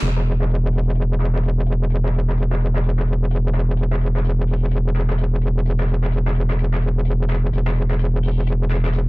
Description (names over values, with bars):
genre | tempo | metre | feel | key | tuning
bass house | 128 BPM | 4/4 | swing 61% on 16ths | unclear | A4 = 441 Hz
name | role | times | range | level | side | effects
metallic wobble bass | bass | 0.0-9.1 s | E1 | -18 LUFS | equal | chorus, tube saturation
vintage brush drum kit | drums | 0.0-9.1 s | hi-hat, snare drum | -33 LUFS | left 2 dB | high-pass filter on hats, low-pass filter on hats, soft clipping on snare, high-pass filter on snare, low-pass filter on snare, high-pass filter on room, low-pass filter on room
room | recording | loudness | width
small room ambience | dense, heavily limited modern master | -17 LUFS | side -24 dB against mid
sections
0.0-9.1 A section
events
none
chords
none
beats
| 0.02 0.49 0.96 1.43 | 1.90 2.36 2.83 3.30 | 3.77 4.24 4.71 5.18 | 5.64 6.11 6.58 7.05 | 7.52 7.99 8.46 8.93